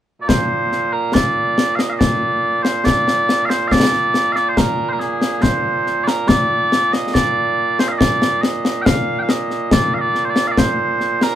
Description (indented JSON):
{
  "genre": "scottish traditional, Scottish pipe music",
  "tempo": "70 BPM",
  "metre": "3/4",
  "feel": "straight",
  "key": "Bb major",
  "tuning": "A4 = 440 Hz",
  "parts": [
    { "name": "mellow small bagpipes", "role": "melody", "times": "0.2-11.4 s", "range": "Bb2 to G5", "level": "-17 LUFS", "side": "right 1 dB", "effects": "none" },
    { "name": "concert snare drum and concert bass drum", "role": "drums", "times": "0.3-11.4 s", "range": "none", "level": "-17 LUFS", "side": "left 2 dB", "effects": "none" }
  ],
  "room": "moderate small room ambience, RT60 0.5 s",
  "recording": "band playing live in one room",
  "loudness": "-14 LUFS",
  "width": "side -11 dB against mid",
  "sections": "0.3-11.4 A section",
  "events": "none",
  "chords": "none"
}